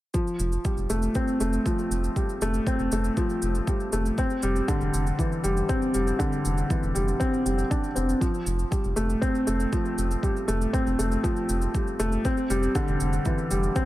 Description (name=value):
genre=piano and strings electronica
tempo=119 BPM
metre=4/4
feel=straight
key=F major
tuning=A4 = 439 Hz
part: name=felt-muted upright piano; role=riff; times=0.1-13.9 s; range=D3 to D4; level=-25 LUFS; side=equal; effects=low-pass filter, digital delay
part: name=electronic kick drum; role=drums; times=0.1-13.9 s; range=none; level=-27 LUFS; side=equal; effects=none
part: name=shaker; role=drums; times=0.1-13.9 s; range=none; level=-38 LUFS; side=right 1 dB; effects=overdrive
part: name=round analog bass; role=bass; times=0.4-13.7 s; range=F1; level=-27 LUFS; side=equal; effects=sidechain pumping
room=light reverb, digital ambience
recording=none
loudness=-23 LUFS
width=side -16 dB against mid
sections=0.1-13.9 A section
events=none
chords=0.1 Fadd9; 4.2 Cadd9/F; 8.2 Fadd9; 12.2 Cadd9/F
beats=| 0.15 0.65 1.16 1.66 | 2.16 2.67 3.17 3.68 | 4.18 4.68 5.19 5.69 | 6.20 6.70 7.21 7.71 | 8.21 8.72 9.22 9.73 | 10.23 10.73 11.24 11.74 | 12.25 12.75 13.26 13.76